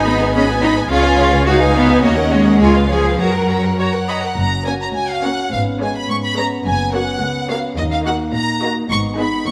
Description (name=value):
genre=cinematic, playful, whimsical film cue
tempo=106 BPM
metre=2/4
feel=straight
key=F# major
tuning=A4 = 441 Hz
part: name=rich studio violin section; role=melody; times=0.0-9.5 s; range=D#5 to C#6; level=-24 LUFS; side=equal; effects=none
part: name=rich studio violin section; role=second line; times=0.0-9.4 s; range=F#4 to E#5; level=-25 LUFS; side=equal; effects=none
part: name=rich symphonic viola section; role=accompaniment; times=0.0-9.4 s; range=G#3 to D#5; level=-23 LUFS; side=equal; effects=none
part: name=rich studio double bass section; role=bass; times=0.0-9.3 s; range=F#1 to F#2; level=-23 LUFS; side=equal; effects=none
part: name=rich studio cello section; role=bass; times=0.1-9.5 s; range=C#2 to F#4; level=-21 LUFS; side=equal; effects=none
part: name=warm French horn section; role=sustained chords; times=4.4-9.5 s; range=A#3 to F#4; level=-26 LUFS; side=equal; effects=none
room=moderate scoring stage reverb, RT60 1.9 s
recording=none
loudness=-16 LUFS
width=mono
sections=0.0-4.4 A section; 4.4-9.5 B section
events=none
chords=0.0 G#m; 0.9 C#7; 2.0 D#m7; 2.6 C#7; 3.2 F#; 5.5 C#5/G#; 6.7 F#; 7.8 D#m; 8.9 G#m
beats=0.34 | 0.90 1.47 | 2.04 2.61 | 3.20 3.79 | 4.37 4.95 | 5.52 6.09 | 6.65 7.22 | 7.78 8.35 | 8.90 9.46